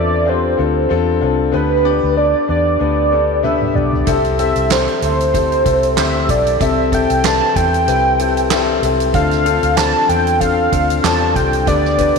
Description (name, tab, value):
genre	piano-driven pop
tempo	95 BPM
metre	4/4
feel	swing 56% on 16ths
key	C major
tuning	A4 = 442 Hz
part	warm velvety synth lead	melody	0.0-12.2 s	B4 to A5	-17 LUFS	right 2 dB	chorus
part	clear upright piano	accompaniment	0.0-12.2 s	C3 to D5	-17 LUFS	left 8 dB	none
part	vintage muted fingered electric bass	bass	0.0-12.2 s	B1 to E2	-20 LUFS	right 2 dB	none
part	soft-mallet drum kit	drums	3.4-12.2 s	handclaps, hi-hat, kick drum, snare drum, toms	-21 LUFS	right 6 dB	none
room	moderate echo chamber reverb, RT60 2.2 s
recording	1960s-style stereo with parts hard left and right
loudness	-13 LUFS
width	side -4 dB against mid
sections	0.0-12.2 A section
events	drum fill 3.4-4.1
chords	0.0 Dm7; 1.5 G/D; 4.1 C6; 9.1 Dm7; 11.7 G/D